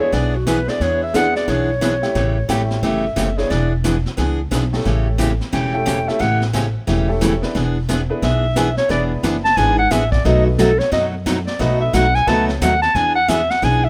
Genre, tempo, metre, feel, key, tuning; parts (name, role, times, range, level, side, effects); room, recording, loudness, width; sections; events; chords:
country, western swing; 178 BPM; 4/4; swing 63% on 8ths; E mixolydian; A4 = 440 Hz
dark clarinet; second line; 0.0-13.9 s; F#4 to A5; -21 LUFS; equal
clear upright piano; accompaniment; 0.0-12.5 s; G3 to B4; -27 LUFS; equal
picked steel-string acoustic guitar; accompaniment; 0.1-13.8 s; B2 to G#4; -24 LUFS; equal
upright bass; bass; 0.1-13.9 s; E1 to F#2; -23 LUFS; equal
vintage brush drum kit; drums; 0.1-13.9 s; brushed snare drum, hi-hat, kick drum, snare drum; -28 LUFS; equal
light reverb; -18 LUFS; mono
0.0-13.9 A section
clarinet solo 0.0-13.9
0.0 E7; 2.2 A7; 3.5 E7; 10.2 B7; 12.9 E7